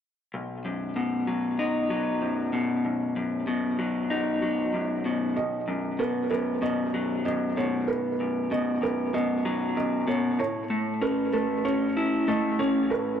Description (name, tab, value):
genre	rock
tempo	96 BPM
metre	4/4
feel	straight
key	B mixolydian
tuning	A4 = 437 Hz
part	electric guitar through a small old amp	arpeggios	0.3-13.2 s	B1 to E4	-25 LUFS	left 2 dB	digital delay
part	felt-muted upright piano	arpeggios	5.4-13.2 s	B4 to D#5	-30 LUFS	right 6 dB	digital delay
room	wet recital hall reverb, RT60 1.4 s, small room ambience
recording	none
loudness	-24 LUFS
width	side -8 dB against mid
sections	0.3-5.4 A section; 5.4-13.2 B section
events	none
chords	0.3 B; 10.4 Aadd9